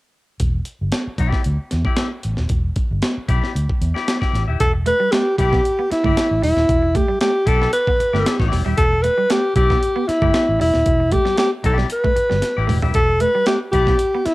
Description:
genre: funk.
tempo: 115 BPM.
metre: 4/4.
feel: straight.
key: E minor.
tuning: A4 = 435 Hz.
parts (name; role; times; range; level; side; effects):
vintage muted fingered electric bass; bass; 0.4-14.3 s; D#1 to E2; -21 LUFS; equal; none.
breakbeat sampler-style drum kit; drums; 0.4-14.3 s; hi-hat, kick drum, snare drum, toms; -21 LUFS; equal; cassette tape.
clean electric guitar; accompaniment; 1.2-13.9 s; E4 to E5; -27 LUFS; left 7 dB; none.
breathy alto saxophone; melody; 4.6-14.3 s; E4 to B4; -17 LUFS; equal; cassette tape.
semi-hollow electric guitar; riff; 4.7-14.3 s; G3 to B3; -28 LUFS; right 7 dB; lush chorus.
room: light reverb.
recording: home recording on cassette.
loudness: -16 LUFS.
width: side -19 dB against mid.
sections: 0.4-4.6 A section; 4.6-14.3 B section.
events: drum fill 12.4-12.9.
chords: 0.4 Em7.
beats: | 0.40 0.93 1.45 1.98 | 2.51 3.03 3.56 4.08 | 4.61 5.13 5.65 6.17 | 6.70 7.22 7.74 8.26 | 8.78 9.30 9.82 10.35 | 10.87 11.39 11.91 12.43 | 12.95 13.47 13.99.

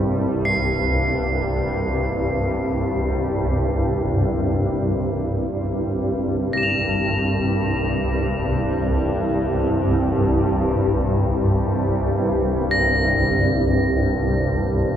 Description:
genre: world meditative, free-time meditation music.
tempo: free time.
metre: none.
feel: none.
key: unclear.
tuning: A4 = 439 Hz.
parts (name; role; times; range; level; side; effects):
granular cloud pad; drone; 0.0-15.0 s; C2 to G2; -19 LUFS; equal; built-in reverb.
crotales; texture; 0.5-15.0 s; Bb6 to F7; -25 LUFS; equal; none.
room: wet lush hall reverb, RT60 2.7 s.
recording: dark, warm production.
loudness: -18 LUFS.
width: side -9 dB against mid.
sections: 0.0-15.0 A section.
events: none.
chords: none.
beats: free time.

